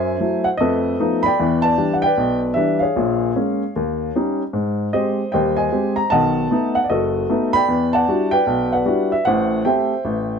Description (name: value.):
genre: solo jazz.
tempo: 152 BPM.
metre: 4/4.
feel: swing 64% on 8ths.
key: unclear.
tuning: A4 = 440 Hz.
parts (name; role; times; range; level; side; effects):
warm upright piano; solo; 0.0-10.4 s; F#1 to B5; -16 LUFS; equal; none.
room: light reverb.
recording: close, detailed microphones.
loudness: -16 LUFS.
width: side -6 dB against mid.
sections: 0.0-10.4 A section.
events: none.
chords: 0.0 F#m7b5; 0.6 F7#11; 1.4 Em7; 3.0 Bbm7; 3.7 Eb7; 4.5 Abmaj7; 6.1 B7; 7.7 Em9; 9.3 Am7.